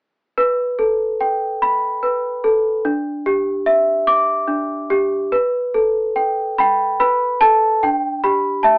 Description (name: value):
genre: children's music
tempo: 48 BPM (dotted quarters)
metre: 6/8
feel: rubato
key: G major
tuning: A4 = 439 Hz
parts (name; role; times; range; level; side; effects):
- worn celesta; solo; 0.4-8.8 s; D4 to D6; -15 LUFS; equal; none
room: light reverb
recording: AM radio sound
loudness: -15 LUFS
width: side -28 dB against mid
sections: 0.4-5.3 A section; 5.3-8.8 B section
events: none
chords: 0.4 Gadd9; 2.8 Em7; 5.3 Gadd9; 7.8 Em7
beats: | 0.37 1.61 | 2.84 4.07 | 5.31 6.57 | 7.82